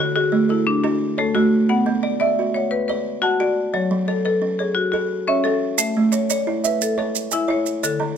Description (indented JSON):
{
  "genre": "southern african traditional, mbira-style interlocking cycle",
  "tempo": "117 BPM (dotted quarters)",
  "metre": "12/8",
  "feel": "straight",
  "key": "A major",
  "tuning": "A4 = 441 Hz",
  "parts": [
    { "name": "buzzing kalimba", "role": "arpeggios", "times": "0.0-8.2 s", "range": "D3 to A5", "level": "-21 LUFS", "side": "right 6 dB", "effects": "none" },
    { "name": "marimba with hard mallets", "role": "arpeggios", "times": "0.0-8.2 s", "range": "D3 to F#5", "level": "-20 LUFS", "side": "left 5 dB", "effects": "none" },
    { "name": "maracas", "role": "percussion", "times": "5.8-8.0 s", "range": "none", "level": "-23 LUFS", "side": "right 10 dB", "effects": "none" }
  ],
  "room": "light reverb",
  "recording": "close, detailed microphones",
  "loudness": "-18 LUFS",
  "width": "side -8 dB against mid",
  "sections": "0.0-8.2 A section",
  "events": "none",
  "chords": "0.0 D; 1.7 Bm; 3.7 F#m; 5.8 A",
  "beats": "0.17 0.68 1.19 | 1.70 2.21 2.72 3.23 | 3.74 4.25 4.76 5.27 | 5.78 6.30 6.81 7.32 | 7.84"
}